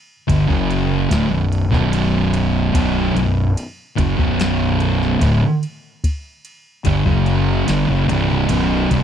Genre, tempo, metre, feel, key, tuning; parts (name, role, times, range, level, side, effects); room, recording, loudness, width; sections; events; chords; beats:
stoner and doom metal; 73 BPM; 4/4; straight; B minor; A4 = 440 Hz
thick fuzz guitar; riff; 0.3-9.0 s; B1 to F#3; -20 LUFS; left 8 dB; distortion
thick fuzz guitar; riff; 0.3-9.0 s; B1 to F#3; -18 LUFS; right 6 dB; distortion
fuzz fingered electric bass; bass; 0.3-9.0 s; B0 to G1; -22 LUFS; left 1 dB; overdrive
soft vintage rhythm box; drums; 0.3-9.0 s; kick drum, ride cymbal, snare drum, toms; -22 LUFS; left 1 dB; overdrive
little or no reverb; dry, close 1970s-style studio recording; -15 LUFS; side -9 dB against mid
0.0-9.0 A section
drum fill 7.7-9.0
0.0 Bm
0.28 1.10 1.92 | 2.74 3.56 4.38 5.21 | 6.03 6.85 7.67 8.49